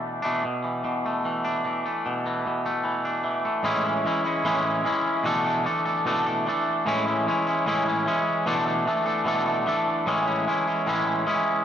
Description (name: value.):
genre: rock.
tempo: 150 BPM.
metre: 4/4.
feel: straight.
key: A major.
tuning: A4 = 440 Hz.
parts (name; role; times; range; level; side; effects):
twangy electric guitar; solo; 0.0-11.6 s; A2 to A4; -22 LUFS; equal; dub echo.
room: light reverb, digital ambience.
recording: echo-heavy mix.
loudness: -22 LUFS.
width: side -9 dB against mid.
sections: 0.5-3.7 A section; 3.7-11.6 B section.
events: none.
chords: 0.5 E7sus4/B; 3.7 Amaj7; 5.3 E7sus4/B; 6.9 Amaj7; 8.5 E7sus4/B; 10.1 Amaj7.